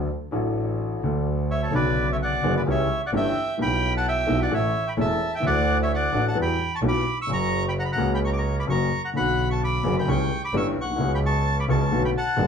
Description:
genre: tango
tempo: 129 BPM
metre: 4/4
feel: rubato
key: B minor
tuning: A4 = 439 Hz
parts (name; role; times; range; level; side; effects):
- dark upright piano; accompaniment; 0.0-12.5 s; E1 to A4; -25 LUFS; left 2 dB; none
- warm double bass; bass; 0.0-12.5 s; E1 to E2; -27 LUFS; right 2 dB; none
- bandoneon; melody; 1.5-12.5 s; A4 to E6; -26 LUFS; right 1 dB; none
room: wet studio reverb, RT60 0.8 s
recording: heard from further back in the room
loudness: -21 LUFS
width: side -7 dB against mid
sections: 0.0-1.7 A section; 1.7-12.5 B section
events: none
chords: 0.0 D; 1.7 Bmadd9; 2.7 C#dim; 3.6 Emadd9/B; 4.5 A; 5.4 Dadd9; 6.4 Emadd9; 7.3 F#; 9.2 Bm; 10.1 C#dim; 11.0 F#sus4/C#; 11.9 Bm7

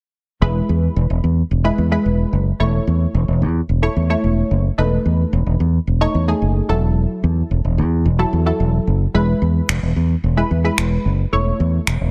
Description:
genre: dance-pop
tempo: 110 BPM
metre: 4/4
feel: straight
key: E major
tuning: A4 = 441 Hz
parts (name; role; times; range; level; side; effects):
- punchy chord stab; accompaniment; 0.4-12.1 s; F#3 to C#5; -23 LUFS; equal; chorus, phaser
- fingered electric bass; bass; 0.4-12.1 s; E1 to E2; -19 LUFS; equal; none
- electronic finger snaps; drums; 9.7-12.0 s; none; -26 LUFS; equal; soft clipping on snare
room: digital ambience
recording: dense, heavily limited modern master, lossy compression artefacts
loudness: -18 LUFS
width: mono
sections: 0.4-12.1 A section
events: none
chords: 0.4 E; 2.6 A/E; 4.8 B7/E; 6.7 F#m7/E; 9.1 E; 11.3 A/E

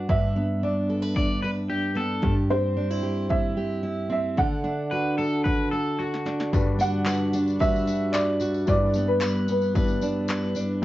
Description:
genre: acoustic pop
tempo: 112 BPM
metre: 4/4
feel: straight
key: G major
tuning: A4 = 439 Hz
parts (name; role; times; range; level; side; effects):
- dark upright piano; melody; 0.0-10.5 s; B4 to F#5; -28 LUFS; right 1 dB; tape echo
- picked steel-string acoustic guitar; accompaniment; 0.0-10.8 s; G2 to B4; -25 LUFS; equal; none
- punchy analog drum machine; drums; 0.1-10.7 s; handclaps, kick drum, snare drum, tambourine; -27 LUFS; left 1 dB; none
- electric guitar at the edge of break-up; second line; 1.2-6.5 s; F#4 to D5; -30 LUFS; left 2 dB; none
- felt-muted upright piano; accompaniment; 6.5-10.8 s; F#3 to B4; -32 LUFS; left 4 dB; none
- tambourine; percussion; 6.5-10.7 s; none; -43 LUFS; left 8 dB; none
room: light reverb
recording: worn, warbling old tape, cassette tape, warbly pitch drift, nothing above 7.6 kHz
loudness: -22 LUFS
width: side -15 dB against mid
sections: 0.0-6.5 A section; 6.5-10.8 B section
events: drum fill 5.5-6.5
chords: 0.1 Em7/G; 2.2 C/G; 4.4 D; 6.5 Gmaj7; 8.7 Em7/G

